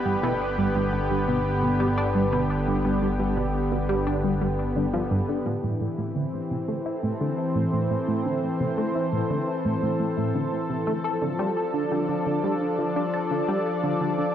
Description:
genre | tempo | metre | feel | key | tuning
ambient, sequencer-driven space music | 86 BPM | 4/4 | straight | A minor | A4 = 440 Hz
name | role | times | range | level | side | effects
lush unison pad | sustained chords | 0.0-14.3 s | D3 to D5 | -25 LUFS | left 1 dB | chorus
fat analog bass | bass | 0.0-5.4 s | G1 | -30 LUFS | equal | none
tight sequenced synth | riff | 0.1-14.2 s | G2 to A4 | -27 LUFS | right 1 dB | chorus, phaser, analog delay
room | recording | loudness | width
moderate plate reverb, RT60 3.2 s | echo-heavy mix | -23 LUFS | side -10 dB against mid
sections
0.0-5.5 A section; 5.5-14.3 B section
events
none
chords
0.0 G; 5.5 Am; 11.0 Dm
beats
0.58 1.28 1.98 | 2.67 3.37 4.07 4.77 | 5.46 6.16 6.86 7.56 | 8.25 8.95 9.65 10.35 | 11.04 11.74 12.44 13.14 | 13.84

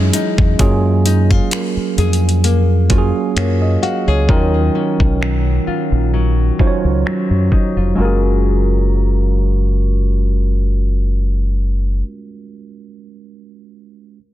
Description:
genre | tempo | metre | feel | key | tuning
contemporary R&B | 65 BPM | 4/4 | swing 54% on 16ths | F# major | A4 = 444 Hz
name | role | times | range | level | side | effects
tine electric piano | accompaniment | 0.0-14.2 s | F#3 to E#5 | -20 LUFS | moving between right 4 dB and right 12 dB | auto-pan
nylon-string guitar | arpeggios | 0.0-12.1 s | D#3 to G#4 | -22 LUFS | left 9 dB | digital delay
deep dub fingered electric bass | bass | 0.0-12.0 s | E#1 to F#2 | -15 LUFS | equal | none
smooth R&B drum kit | drums | 0.1-7.8 s | finger snaps, hi-hat, kick drum | -17 LUFS | equal | soft clipping on snare
room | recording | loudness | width
digital ambience | dense, heavily limited modern master, low-pass filter | -13 LUFS | side -14 dB against mid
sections
0.6-8.0 A section; 8.0-11.7 B section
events
filter sweep 0.6-8.0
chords
0.0 Emaj13; 0.6 F#maj9; 4.3 D#m9; 8.0 F#maj9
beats
| 0.59 1.52 2.44 3.36 | 4.29 5.21 6.13 7.06 | 7.98 8.90 9.83 10.75

